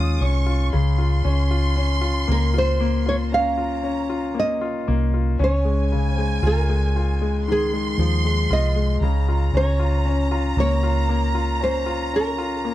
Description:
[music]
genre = pop ballad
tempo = 58 BPM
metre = 4/4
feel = straight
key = unclear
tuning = A4 = 441 Hz
[part]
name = nylon-string guitar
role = melody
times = 0.0-12.7 s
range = Ab4 to F5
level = -25 LUFS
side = right 2 dB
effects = none
[part]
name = warm studio violin section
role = second line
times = 0.0-12.7 s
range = Ab5 to Eb6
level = -29 LUFS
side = right 3 dB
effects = none
[part]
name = bright concert grand piano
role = accompaniment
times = 0.0-12.7 s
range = Db3 to F4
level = -25 LUFS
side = left 5 dB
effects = none
[part]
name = vintage muted fingered electric bass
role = bass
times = 0.0-12.7 s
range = C2 to Eb2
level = -21 LUFS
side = right 1 dB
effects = none
[sound]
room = studio reverb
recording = dry, close 1970s-style studio recording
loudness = -18 LUFS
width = side -14 dB against mid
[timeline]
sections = 0.0-12.7 A section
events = none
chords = 0.0 Dbadd9; 0.7 Bbm/Db; 5.4 Dbadd9; 9.0 Bbm/Db

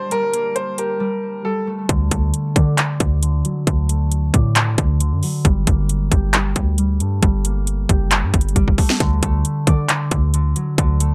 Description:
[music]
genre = hip hop, trap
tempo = 135 BPM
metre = 4/4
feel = half-time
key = unclear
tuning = A4 = 440 Hz
[part]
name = clear concert grand piano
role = melody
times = 0.0-1.7 s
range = A4 to C5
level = -24 LUFS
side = equal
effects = delay
[part]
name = concert harp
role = accompaniment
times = 0.0-11.1 s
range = D3 to D5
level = -25 LUFS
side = equal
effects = low-pass filter
[part]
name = warm brass ensemble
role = sustained chords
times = 0.0-1.9 s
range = Bb2 to A5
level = -41 LUFS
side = equal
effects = none
[part]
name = trap drum kit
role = drums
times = 0.1-11.1 s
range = handclaps, hi-hat, kick drum, snare drum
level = -20 LUFS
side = equal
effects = overdrive
[part]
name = hard-hitting 808-style bass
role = bass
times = 1.9-11.1 s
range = F#1 to D3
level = -21 LUFS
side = equal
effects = none
[sound]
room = little or no reverb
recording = none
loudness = -18 LUFS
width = mono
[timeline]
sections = 0.0-1.9 A section; 1.9-11.1 B section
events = break 1.0-1.9; filter sweep on harp 1.9-9.0; drum fill 8.6-9.0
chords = 0.0 Gmadd9; 1.9 D; 5.4 Gmadd9; 9.0 D

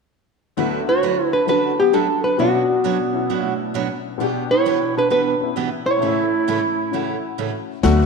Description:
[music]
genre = country, western swing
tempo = 132 BPM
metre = 4/4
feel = swing 67% on 8ths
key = D major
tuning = A4 = 442 Hz
[part]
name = honky-tonk upright piano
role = accompaniment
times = 0.6-8.1 s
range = D2 to F#5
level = -26 LUFS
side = left 13 dB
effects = none
[part]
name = picked steel-string acoustic guitar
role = accompaniment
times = 0.6-8.1 s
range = A2 to C#5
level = -26 LUFS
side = right 10 dB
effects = none
[part]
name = hollow-body jazz guitar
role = melody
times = 0.9-8.1 s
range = A3 to C#5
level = -19 LUFS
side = left 2 dB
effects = slapback echo
[part]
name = mellow clarinet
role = second line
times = 0.9-7.3 s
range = B3 to F#4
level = -23 LUFS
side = right 9 dB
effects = none
[part]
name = upright bass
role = bass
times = 7.8-8.1 s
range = D2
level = -16 LUFS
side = left 1 dB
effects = none
[part]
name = jazz brush drum kit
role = drums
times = 7.8-8.1 s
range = brushed snare drum, kick drum, snare drum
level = -27 LUFS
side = left 9 dB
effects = none
[sound]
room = moderate echo chamber reverb, RT60 1.9 s, small room ambience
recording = 1960s-style stereo with parts hard left and right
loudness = -17 LUFS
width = side -4 dB against mid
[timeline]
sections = 0.6-7.8 A section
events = none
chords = 0.6 D6; 2.4 Bmadd9; 4.2 Em7/B; 6.0 A

